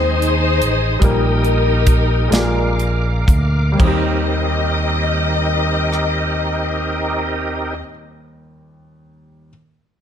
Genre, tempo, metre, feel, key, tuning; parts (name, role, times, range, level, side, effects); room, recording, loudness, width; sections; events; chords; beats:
slow gospel; 38-52 BPM (dotted quarters); 6/8; straight; Eb major; A4 = 440 Hz
warm studio string section; melody; 0.0-7.8 s; Eb4 to Eb5; -21 LUFS; left 3 dB
clear grand piano; accompaniment; 0.0-9.5 s; Eb2 to D5; -23 LUFS; left 1 dB
bright tonewheel organ; sustained chords; 0.0-7.7 s; C4 to Eb6; -23 LUFS; right 2 dB; slow rotary speaker, chorus vibrato
fingered electric bass; bass; 0.0-7.8 s; A1 to Eb2; -19 LUFS; equal
tight funk drum kit; drums; 0.2-6.2 s; crash cymbal, hi-hat, kick drum, rim click, snare drum; -17 LUFS; equal
light reverb; -15 LUFS; side -9 dB against mid
0.0-3.8 A section; 3.8-7.0 B section
slowing down 0.0-3.8
0.0 Ab/Eb; 1.0 Eb/Bb; 2.3 Bb7; 3.8 Eb6
| 1.02 2.32 | 3.79 5.39